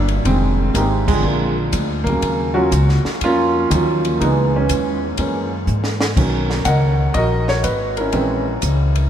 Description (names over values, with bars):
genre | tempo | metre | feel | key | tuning
jazz piano trio | 122 BPM | 4/4 | swing 68% on 8ths | unclear | A4 = 440 Hz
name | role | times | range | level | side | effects
warm concert grand piano | melody | 0.0-9.1 s | Db3 to F#5 | -18 LUFS | right 1 dB | none
upright bass | bass | 0.0-9.1 s | F1 to Ab2 | -19 LUFS | equal | none
compact cocktail drum kit | drums | 0.1-9.0 s | crash cymbal, hi-hat, kick drum, ride cymbal, snare drum | -25 LUFS | equal | none
room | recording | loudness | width
moderate cathedral reverb, RT60 6.6 s | in a vast, echoing space | -15 LUFS | side -10 dB against mid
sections
0.0-6.2 A section; 6.2-9.1 B section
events
band accent 1.0; drum fill 5.7-6.2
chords
0.3 Fm7; 1.2 Bb7; 2.2 Ebm9; 4.2 Dbm7; 5.2 Gb7; 6.2 Bmaj9; 8.1 Bbm7b5